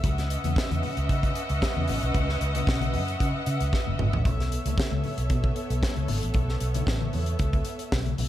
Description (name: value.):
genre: disco.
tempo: 114 BPM.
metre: 4/4.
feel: straight.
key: C# minor.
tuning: A4 = 441 Hz.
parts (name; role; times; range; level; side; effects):
rich studio string section; sustained chords; 0.0-8.3 s; B3 to F#5; -31 LUFS; equal; none.
vintage muted fingered electric bass; bass; 0.0-8.3 s; F#1 to C#3; -28 LUFS; equal; none.
modern studio drum kit; drums; 0.0-8.3 s; hi-hat, kick drum, snare drum, toms; -28 LUFS; equal; none.
congas; percussion; 0.0-8.3 s; none; -35 LUFS; left 7 dB; none.
room: light reverb.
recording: none.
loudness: -24 LUFS.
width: side -13 dB against mid.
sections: 0.0-8.3 A section.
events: drum fill 3.7-4.2.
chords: 0.0 C#m11; 4.2 B9sus4.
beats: | 0.04 0.56 1.09 1.62 | 2.14 2.67 3.19 3.72 | 4.25 4.77 5.30 5.82 | 6.35 6.87 7.40 7.92.